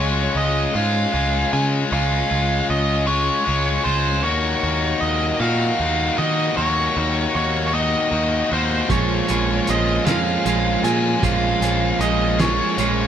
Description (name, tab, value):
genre	indie rock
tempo	52 BPM (dotted quarters)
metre	6/8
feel	straight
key	Db major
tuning	A4 = 440 Hz
part	nasal lead guitar with a parked wah	melody	0.0-13.1 s	C5 to Ab5	-23 LUFS	right 3 dB	overdrive
part	distorted electric guitar	riff	0.0-13.1 s	Eb3 to Gb4	-22 LUFS	left 5 dB	overdrive
part	growling picked electric bass	bass	0.0-13.1 s	Bb1 to Eb3	-23 LUFS	equal	overdrive
part	clean electric guitar	riff	8.9-13.1 s	Bb2 to Ab4	-23 LUFS	right 8 dB	none
part	cloth-damped thuddy drum kit	drums	8.9-13.0 s	hi-hat, kick drum, snare drum	-24 LUFS	equal	none
room	moderate small room reverb, RT60 0.6 s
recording	band playing live in one room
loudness	-17 LUFS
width	side -9 dB against mid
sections	0.0-13.1 A section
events	none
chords	0.0 Db; 4.2 Ebm7; 8.9 Bbm7